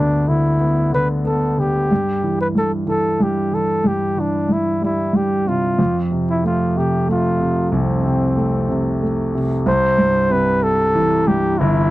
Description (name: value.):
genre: pop.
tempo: 62 BPM (dotted quarters).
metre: 6/8.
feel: straight.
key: C major.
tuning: A4 = 441 Hz.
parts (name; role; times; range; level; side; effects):
mellow flugelhorn; melody; 0.0-11.9 s; C4 to C5; -19 LUFS; equal; none.
warm concert grand piano; accompaniment; 0.0-11.9 s; G1 to B3; -18 LUFS; equal; none.
room: light reverb.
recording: dry, close 1970s-style studio recording.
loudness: -16 LUFS.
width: side -16 dB against mid.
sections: 0.0-9.7 A section; 9.7-11.9 B section.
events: none.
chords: 0.0 G; 1.9 C/G (rootless); 5.8 F; 9.7 C.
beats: 0.92 | 1.90 2.88 | 3.85 4.82 | 5.79 6.76 | 7.73 8.70 | 9.67 10.64 | 11.60.